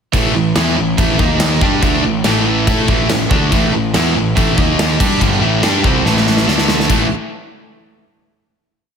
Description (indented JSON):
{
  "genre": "hard rock",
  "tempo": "142 BPM",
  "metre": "4/4",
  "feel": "straight",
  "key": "unclear",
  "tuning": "A4 = 440 Hz",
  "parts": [
    { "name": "cranked stack guitar", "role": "riff", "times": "0.1-7.1 s", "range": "G2 to A4", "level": "-18 LUFS", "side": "right 9 dB", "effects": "overdrive" },
    { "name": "sludgy distorted guitar", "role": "riff", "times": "0.1-7.1 s", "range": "G2 to A4", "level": "-18 LUFS", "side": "left 10 dB", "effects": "overdrive, slapback echo" },
    { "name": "fuzz picked electric bass", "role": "bass", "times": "0.1-7.1 s", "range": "G1 to A2", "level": "-19 LUFS", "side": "equal", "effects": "overdrive" },
    { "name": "gated 80s drum kit", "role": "drums", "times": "0.1-7.0 s", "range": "crash cymbal, kick drum, snare drum", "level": "-16 LUFS", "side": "equal", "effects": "none" }
  ],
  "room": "moderate lush hall reverb, RT60 1.6 s, small room ambience",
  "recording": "big arena sound",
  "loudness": "-12 LUFS",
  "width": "side -7 dB against mid",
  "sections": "0.1-6.9 riff; 6.9-8.6 final chord",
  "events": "drum fill 6.1-6.9",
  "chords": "0.1 A5; 1.2 D#5; 1.6 A5; 4.6 D#5; 5.0 A5; 6.5 D5; 6.9 A5",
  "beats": "| 0.13 0.55 0.98 1.40 | 1.82 2.25 2.67 3.09 | 3.52 3.94 4.36 4.79 | 5.21 5.63 6.05 6.47 | 6.89"
}